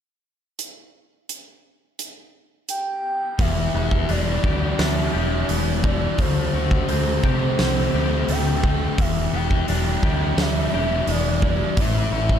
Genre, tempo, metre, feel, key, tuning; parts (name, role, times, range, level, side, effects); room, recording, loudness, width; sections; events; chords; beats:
rock, shoegaze and dream pop; 86 BPM; 4/4; straight; E minor; A4 = 440 Hz
huge arena drum kit; drums; 0.6-12.4 s; hi-hat, kick drum, snare drum; -24 LUFS; right 1 dB
pure breathy sine lead; melody; 2.7-12.4 s; C5 to G5; -28 LUFS; right 3 dB; chorus, slapback echo
twangy electric guitar; arpeggios; 3.4-12.4 s; E3 to G4; -33 LUFS; left 12 dB; ensemble chorus, slapback echo
raw garage guitar; riff; 3.4-12.4 s; E2 to G4; -29 LUFS; right 12 dB; overdrive, reverse reverb
thick fuzz guitar; riff; 3.4-12.4 s; E2 to G4; -25 LUFS; left 10 dB; distortion, wide subtle chorus
growling picked electric bass; bass; 3.4-12.4 s; E1 to C3; -24 LUFS; equal; overdrive
small room ambience; dark, warm production; -19 LUFS; side -9 dB against mid
0.6-3.4 A section; 3.4-12.4 B section
0.6 N.C.; 3.4 Em7; 6.2 D7sus4; 9.0 Em7; 11.8 A5
| 0.59 1.29 1.99 2.69 | 3.39 4.09 4.79 5.49 | 6.19 6.89 7.59 8.29 | 8.99 9.68 10.38 11.08 | 11.78